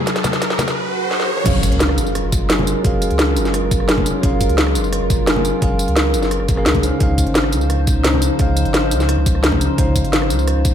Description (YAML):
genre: liquid drum and bass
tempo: 173 BPM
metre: 4/4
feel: straight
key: Gb lydian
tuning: A4 = 442 Hz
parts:
  - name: bell-like tine electric piano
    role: accompaniment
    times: 0.0-10.7 s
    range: Db3 to Bb5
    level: -22 LUFS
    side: equal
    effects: phaser, ping-pong delay
  - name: glassy FM pad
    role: sustained chords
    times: 0.0-10.7 s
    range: F3 to C5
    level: -24 LUFS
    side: right 1 dB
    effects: ensemble chorus, built-in reverb
  - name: riser, swell and impact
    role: sound effects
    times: 0.0-2.8 s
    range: none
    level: -22 LUFS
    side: right 1 dB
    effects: none
  - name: garage drum kit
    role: drums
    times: 0.1-10.7 s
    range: crash cymbal, hi-hat, rim click, snare drum, tambourine, toms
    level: -19 LUFS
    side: equal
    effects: high-pass filter on snare, high-pass filter on hats, high-pass filter on perc, high-pass filter on toms, high-pass filter on cymbals, high-pass filter on room
  - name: congas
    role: percussion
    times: 0.2-9.6 s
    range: none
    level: -25 LUFS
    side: left 4 dB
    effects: none
  - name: sub bass with octave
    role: bass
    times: 1.5-10.7 s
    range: Gb1 to Db2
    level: -20 LUFS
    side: equal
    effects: tube saturation
  - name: electronic kick drum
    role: drums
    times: 1.5-10.7 s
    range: none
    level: -19 LUFS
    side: equal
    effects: overdrive
room: light reverb, digital ambience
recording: none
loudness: -14 LUFS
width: side -9 dB against mid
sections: 0.0-1.5 A section; 1.5-10.7 B section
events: build-up 0.0-1.5; drum fill 0.0-0.8, 1.1-1.5; riser 0.0-1.5; swell 0.8-1.5; drop 1.5-10.7; impact 1.5-2.8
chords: 0.0 Gbadd9; 1.5 Gbmaj9; 6.8 Dbmaj9